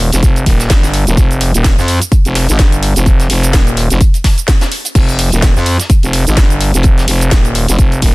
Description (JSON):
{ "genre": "bass house", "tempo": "127 BPM", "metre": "4/4", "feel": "swing 57% on 16ths", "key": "F minor", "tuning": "A4 = 440 Hz", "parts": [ { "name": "growling FM bass", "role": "bass", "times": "0.0-8.1 s", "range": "Eb1 to F2", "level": "-12 LUFS", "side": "equal", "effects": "tube saturation, sidechain pumping" }, { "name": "house drum kit", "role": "drums", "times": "0.1-8.1 s", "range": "crash cymbal, hi-hat, shaker, snare drum", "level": "-18 LUFS", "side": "right 1 dB", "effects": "none" }, { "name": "vintage brush drum kit", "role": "drums", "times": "0.1-8.1 s", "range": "hi-hat, snare drum", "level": "-25 LUFS", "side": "left 1 dB", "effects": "none" }, { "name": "electronic kick drum", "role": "drums", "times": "0.2-8.1 s", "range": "none", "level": "-10 LUFS", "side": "equal", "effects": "none" } ], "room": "little or no reverb", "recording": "dense, heavily limited modern master", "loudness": "-9 LUFS", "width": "side -22 dB against mid", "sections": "0.0-8.1 A section", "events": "none", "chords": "none" }